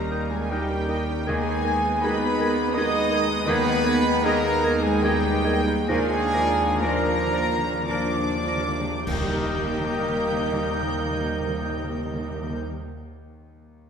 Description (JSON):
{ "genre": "classical, romantic movement for piano and orchestra", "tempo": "48-84 BPM", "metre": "3/4", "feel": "rubato", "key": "Eb major", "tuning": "A4 = 440 Hz", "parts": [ { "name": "clear concert grand piano", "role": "melody", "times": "0.0-13.9 s", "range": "Eb2 to Eb5", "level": "-29 LUFS", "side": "left 1 dB", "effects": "none" }, { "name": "warm symphonic violin section", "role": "melody", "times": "0.0-12.6 s", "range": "G5 to G6", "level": "-32 LUFS", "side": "left 2 dB", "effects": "none" }, { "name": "warm studio violin section", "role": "second line", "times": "0.0-12.6 s", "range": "G5 to Eb6", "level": "-32 LUFS", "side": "left 1 dB", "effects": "none" }, { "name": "dark symphonic viola section", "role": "accompaniment", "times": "0.0-12.6 s", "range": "Ab3 to Cb5", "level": "-33 LUFS", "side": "right 1 dB", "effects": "none" }, { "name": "bright trombone section", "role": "sustained chords", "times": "0.0-12.6 s", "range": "Eb3 to Bb3", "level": "-34 LUFS", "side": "right 2 dB", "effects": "none" }, { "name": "warm French horn section", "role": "sustained chords", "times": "0.0-12.6 s", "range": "Bb3 to Eb4", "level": "-33 LUFS", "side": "equal", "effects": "none" }, { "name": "warm trumpet", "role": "stabs", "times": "0.0-12.6 s", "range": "G4 to Eb5", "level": "-30 LUFS", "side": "right 1 dB", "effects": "none" }, { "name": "dark studio cello section", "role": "bass", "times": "0.0-12.6 s", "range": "G3 to Eb4", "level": "-32 LUFS", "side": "right 2 dB", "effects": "none" }, { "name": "warm symphonic double bass section", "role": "bass", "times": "0.0-12.6 s", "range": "Eb2", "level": "-32 LUFS", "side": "right 1 dB", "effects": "none" }, { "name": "timpani", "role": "percussion", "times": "0.0-12.6 s", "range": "Eb3", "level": "-34 LUFS", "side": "equal", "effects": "none" }, { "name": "bright oboe", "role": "second line", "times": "0.1-12.6 s", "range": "D5 to Eb5", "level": "-37 LUFS", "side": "right 2 dB", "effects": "none" }, { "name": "mellow hollow silver concert flute", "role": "second line", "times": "0.1-12.6 s", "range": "Eb6 to Bb6", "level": "-35 LUFS", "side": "left 1 dB", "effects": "none" }, { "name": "mellow bassoon", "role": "accompaniment", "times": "0.1-12.6 s", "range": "Eb3 to F3", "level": "-33 LUFS", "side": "right 1 dB", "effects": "none" }, { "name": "clash cymbals and concert bass drum", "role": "percussion", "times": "9.1-11.3 s", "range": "none", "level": "-35 LUFS", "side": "equal", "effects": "none" } ], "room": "wet scoring stage reverb, RT60 1.7 s", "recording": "heard from further back in the room", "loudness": "-21 LUFS", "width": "side -7 dB against mid", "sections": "0.0-9.1 A section; 9.1-13.9 B section", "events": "slowing down 2.4-9.1; timpani fill 5.9-9.1; band accent 9.1-10.2", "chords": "0.0 Eb7; 1.3 Abm/Eb; 5.9 Bb7/Eb; 9.1 Eb" }